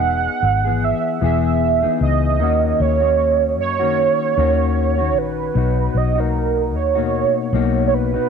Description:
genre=indie pop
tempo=76 BPM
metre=4/4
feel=swing 55% on 16ths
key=unclear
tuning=A4 = 439 Hz
part: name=warm velvety synth lead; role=melody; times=0.0-8.3 s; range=A#4 to F#5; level=-18 LUFS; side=right 9 dB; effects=analog chorus, tape echo
part: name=mellow electric guitar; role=accompaniment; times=0.0-8.3 s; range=B2 to G#4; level=-22 LUFS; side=left 14 dB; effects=lush chorus, warbly pitch drift
part: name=vintage muted fingered electric bass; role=bass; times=0.0-8.2 s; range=E1 to F#2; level=-20 LUFS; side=left 1 dB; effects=none
room=light reverb, digital ambience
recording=1960s-style stereo with parts hard left and right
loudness=-15 LUFS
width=side -6 dB against mid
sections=0.0-8.3 A section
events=none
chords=0.0 Emaj7; 2.4 D#m7; 5.6 Bmaj7

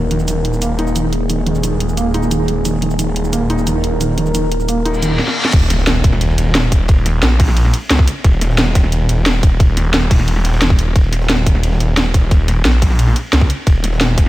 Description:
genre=dark technical drum and bass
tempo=177 BPM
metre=4/4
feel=straight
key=unclear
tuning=A4 = 440 Hz
part: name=deep dark ambient pad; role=sustained chords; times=0.0-5.5 s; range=Bb3 to Bb4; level=-22 LUFS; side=equal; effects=chorus, built-in reverb, sidechain pumping
part: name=snarling distorted saw bass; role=bass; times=0.0-14.3 s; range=Eb1 to Db2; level=-16 LUFS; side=equal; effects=distortion, overdrive
part: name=felt-muted upright piano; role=arpeggios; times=0.1-5.1 s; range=Eb3 to Eb4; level=-20 LUFS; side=right 1 dB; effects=sidechain pumping, tape echo
part: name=drum and bass drum kit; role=drums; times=0.1-14.3 s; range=crash cymbal, hi-hat, shaker, snare drum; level=-19 LUFS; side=equal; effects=studio reverb
part: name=reverse cymbal and impact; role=sound effects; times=5.0-6.9 s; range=none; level=-22 LUFS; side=left 1 dB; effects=none
part: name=crunchy breakbeat drum kit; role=drums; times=5.5-14.3 s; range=hi-hat, ride cymbal, snare drum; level=-29 LUFS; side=equal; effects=high-pass filter on cymbals, studio reverb, high-pass filter on hats, high-pass filter on snare, high-pass filter on room
part: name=electronic kick drum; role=drums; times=5.5-14.2 s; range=none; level=-11 LUFS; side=equal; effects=studio reverb
room=light reverb, small room ambience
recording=none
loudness=-12 LUFS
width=side -16 dB against mid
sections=0.0-5.5 A section; 5.5-14.3 B section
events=filter sweep on ambient pad 0.0-5.5; reverse cymbal 5.0-5.5; drum fill 5.2-5.5; drop 5.5-14.3; impact 5.5-6.9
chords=0.0 Eb5

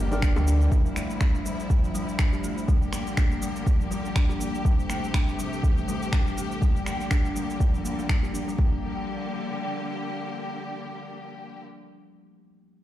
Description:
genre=afro house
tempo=122 BPM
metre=4/4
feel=swing 56% on 16ths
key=G dorian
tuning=A4 = 439 Hz
part: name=bright studio string section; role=sustained chords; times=0.0-11.6 s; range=C3 to G4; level=-34 LUFS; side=equal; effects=sidechain pumping
part: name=kalimba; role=arpeggios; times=0.0-8.8 s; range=E3 to G4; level=-32 LUFS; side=left 2 dB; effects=sidechain pumping, low-pass filter, dub echo
part: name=felt-muted upright piano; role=stabs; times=0.0-0.7 s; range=D4 to Bb4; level=-35 LUFS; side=right 1 dB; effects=sidechain pumping, dub echo
part: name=warm sub bass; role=bass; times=0.0-0.7 s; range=G1 to D2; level=-22 LUFS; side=equal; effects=sidechain pumping
part: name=electronic shaker and finger snaps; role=drums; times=0.1-8.6 s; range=none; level=-34 LUFS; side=equal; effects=overdrive
part: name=bongos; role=percussion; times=0.1-0.7 s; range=none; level=-37 LUFS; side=left 3 dB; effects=none
part: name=electronic kick drum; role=drums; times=0.2-8.7 s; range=none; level=-23 LUFS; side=equal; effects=overdrive
room=little or no reverb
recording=played on a big sound system in a bare room, large studio reverb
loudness=-23 LUFS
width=side -13 dB against mid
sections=0.0-8.6 A section; 8.6-12.5 B section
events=none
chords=0.0 Gm; 0.7 Dmadd9; 2.7 Gm; 4.6 Am7; 6.6 Gm

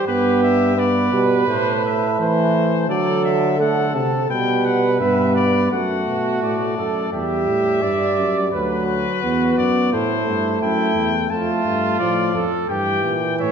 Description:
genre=classical, imitative canzona for brass ensemble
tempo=86 BPM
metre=4/4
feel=straight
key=unclear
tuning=A4 = 441 Hz
part: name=clear trumpet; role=melody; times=0.0-13.5 s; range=B4 to A5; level=-24 LUFS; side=left 6 dB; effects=none
part: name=warm trumpet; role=second line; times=0.0-13.5 s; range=E4 to D5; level=-23 LUFS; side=right 3 dB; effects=none
part: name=warm euphonium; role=accompaniment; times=0.0-13.5 s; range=E3 to B3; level=-20 LUFS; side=right 1 dB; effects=none
part: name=warm bass trombone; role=bass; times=0.1-13.5 s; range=D2 to E3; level=-23 LUFS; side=right 1 dB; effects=none
room=wet concert hall reverb, RT60 2.1 s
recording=minimal, uncompressed stereo recording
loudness=-16 LUFS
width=side -7 dB against mid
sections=0.0-5.7 A section; 5.7-13.5 B section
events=none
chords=0.1 G; 1.5 Am; 2.9 D; 4.3 G/B; 5.7 D/F#; 7.1 Em11; 8.5 Bm/D; 9.9 Am; 11.3 Dm/F; 12.7 Gm

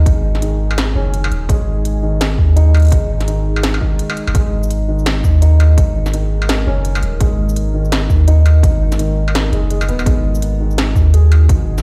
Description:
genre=half-time drum and bass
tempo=168 BPM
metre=4/4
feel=swing 59% on 16ths, half-time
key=unclear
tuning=A4 = 439 Hz
part: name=deep dark ambient pad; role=sustained chords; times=0.0-11.8 s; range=G#3 to A#4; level=-29 LUFS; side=equal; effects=chorus, built-in reverb, vintage 12-bit sampler grit, sidechain pumping
part: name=felt-muted upright piano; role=arpeggios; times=0.0-11.8 s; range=D#3 to G#4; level=-27 LUFS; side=equal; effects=dub echo
part: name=long sustained 808-style bass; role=bass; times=0.0-11.8 s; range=D#1 to D#2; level=-16 LUFS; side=equal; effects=none
part: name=electronic kick drum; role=drums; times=0.1-11.6 s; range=none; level=-18 LUFS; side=equal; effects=none
part: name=industrial drum kit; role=drums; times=0.1-11.8 s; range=hi-hat, shaker, snare drum, struck metal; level=-24 LUFS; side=equal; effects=none
room=little or no reverb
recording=played on a big sound system in a bare room, stone room reverb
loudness=-14 LUFS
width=mono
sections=0.0-11.8 A section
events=break 4.0-4.3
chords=0.0 G#m

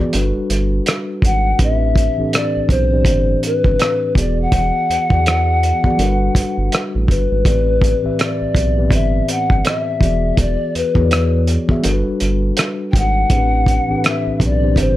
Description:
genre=R&B, neo-soul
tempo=82 BPM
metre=4/4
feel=swing 60% on 16ths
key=A dorian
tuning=A4 = 440 Hz
part: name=mellow tine electric piano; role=accompaniment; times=0.0-15.0 s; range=A2 to E5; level=-21 LUFS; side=left 1 dB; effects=medium stereo tremolo
part: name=round analog bass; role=bass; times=0.1-15.0 s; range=E1 to E2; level=-18 LUFS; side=equal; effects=none
part: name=cloth-damped thuddy drum kit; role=drums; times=0.1-15.0 s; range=hi-hat, kick drum, rim click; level=-17 LUFS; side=equal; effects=none
part: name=mellow hollow polished pan flute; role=melody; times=1.2-15.0 s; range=B4 to G5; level=-19 LUFS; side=left 2 dB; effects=slapback echo
room=light reverb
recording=none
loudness=-14 LUFS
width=side -14 dB against mid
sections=0.0-15.0 A section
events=none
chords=0.1 Gmaj9; 1.6 Am11; 4.2 E9; 6.0 Gmaj9; 7.4 Am11; 10.0 E9; 11.8 Gmaj9; 13.3 Am11

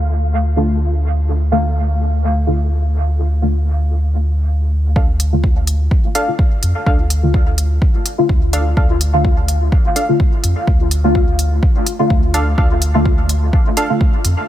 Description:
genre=dub techno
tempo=126 BPM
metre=4/4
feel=swing 54% on 16ths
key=D minor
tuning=A4 = 440 Hz
part: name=soft dub sub bass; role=bass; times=0.0-14.3 s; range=D2 to F2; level=-16 LUFS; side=equal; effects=sidechain pumping
part: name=deep mellow chord stab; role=stabs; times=0.6-14.0 s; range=D3 to F4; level=-20 LUFS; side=left 1 dB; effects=chorus, phaser, sidechain pumping, dub echo
part: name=filtered dub chord stab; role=riff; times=5.0-13.9 s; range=D4 to F5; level=-23 LUFS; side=right 1 dB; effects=chorus, sidechain pumping, dub echo
part: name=electronic kick drum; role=drums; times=5.0-14.1 s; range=none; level=-14 LUFS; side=equal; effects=studio reverb
part: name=electronic hi-hat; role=drums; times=5.2-14.3 s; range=none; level=-21 LUFS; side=equal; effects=low-pass filter on hats, studio reverb
room=light reverb, digital ambience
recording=low-pass filter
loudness=-13 LUFS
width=side -12 dB against mid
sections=0.0-5.0 A section; 5.0-14.5 B section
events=filter sweep on synth stab 0.0-5.0, 5.0-14.5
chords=0.0 Dm

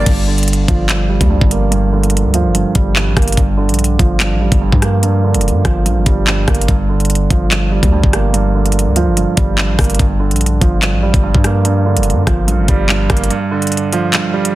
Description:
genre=hip hop, drill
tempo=145 BPM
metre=4/4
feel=half-time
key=G minor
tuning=A4 = 440 Hz
part: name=bright concert grand piano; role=accompaniment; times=0.0-14.6 s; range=G2 to Bb3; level=-16 LUFS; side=right 4 dB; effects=low-pass filter
part: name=hard-hitting 808-style bass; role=bass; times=0.0-13.3 s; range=F1 to G2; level=-15 LUFS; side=equal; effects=none
part: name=drill drum kit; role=drums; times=0.1-14.5 s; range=crash cymbal, handclaps, hi-hat, kick drum, rim click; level=-15 LUFS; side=equal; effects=none
room=little or no reverb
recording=dense, heavily limited modern master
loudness=-11 LUFS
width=side -16 dB against mid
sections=0.1-14.6 A section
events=filter sweep on grand piano 0.1-13.3; kick muted 13.3-14.6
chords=0.1 Gm7

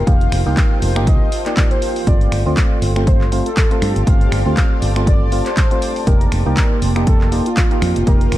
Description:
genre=deep house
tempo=120 BPM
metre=4/4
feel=swing 56% on 16ths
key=G minor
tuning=A4 = 444 Hz
part: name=warm velvety synth lead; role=melody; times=0.0-8.4 s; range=F4 to F5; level=-25 LUFS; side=left 1 dB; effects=chorus, tape echo
part: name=warbly tape-like pad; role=sustained chords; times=0.0-8.4 s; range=Bb3 to D6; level=-28 LUFS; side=right 2 dB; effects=chorus, built-in reverb, vintage 12-bit sampler grit, sidechain pumping
part: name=percussive organ stab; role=stabs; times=0.0-8.4 s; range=A3 to G4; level=-23 LUFS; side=right 1 dB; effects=analog chorus, sidechain pumping, dub echo
part: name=fingered electric bass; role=bass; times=0.0-8.4 s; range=F1 to G2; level=-18 LUFS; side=equal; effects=sidechain pumping
part: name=granular cloud pad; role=texture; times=0.0-8.4 s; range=F4 to A5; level=-27 LUFS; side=equal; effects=built-in reverb, sidechain pumping
part: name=electronic kick drum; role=drums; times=0.1-8.2 s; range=none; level=-15 LUFS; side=equal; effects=none
part: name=punchy analog drum machine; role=drums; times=0.1-8.4 s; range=finger snaps, handclaps, hi-hat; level=-25 LUFS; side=equal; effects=none
room=little or no reverb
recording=dark, warm production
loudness=-13 LUFS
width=side -14 dB against mid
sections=0.0-8.4 A section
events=none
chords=0.0 F9sus4; 2.1 G9sus4; 6.1 F9sus4

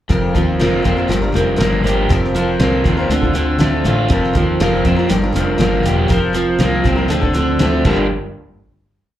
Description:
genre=folk rock and heartland rock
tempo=120 BPM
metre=4/4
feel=straight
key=unclear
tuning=A4 = 441 Hz
part: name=picked steel-string acoustic guitar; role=accompaniment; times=0.1-8.1 s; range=G2 to Bb4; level=-18 LUFS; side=left 2 dB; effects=none
part: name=crunchy overdriven guitar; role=riff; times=0.1-8.1 s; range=F2 to G4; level=-18 LUFS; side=right 1 dB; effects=slapback echo
part: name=fingered electric bass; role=bass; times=0.1-8.1 s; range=E1 to F2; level=-19 LUFS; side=equal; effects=none
part: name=cloth-damped thuddy drum kit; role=drums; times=0.1-8.0 s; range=crash cymbal, hi-hat, kick drum, snare drum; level=-19 LUFS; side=equal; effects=none
room=light reverb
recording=live gig heard through the venue's PA, club reverb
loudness=-13 LUFS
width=side -12 dB against mid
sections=0.1-8.1 verse; 8.1-9.2 final hit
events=none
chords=0.1 Fsus4; 1.1 Gm7; 2.1 Fsus4; 3.1 Dm7; 4.1 Fsus4; 5.1 Gm7; 6.1 Fsus4; 7.1 Dm7; 7.8 Gm7; 8.1 N.C.

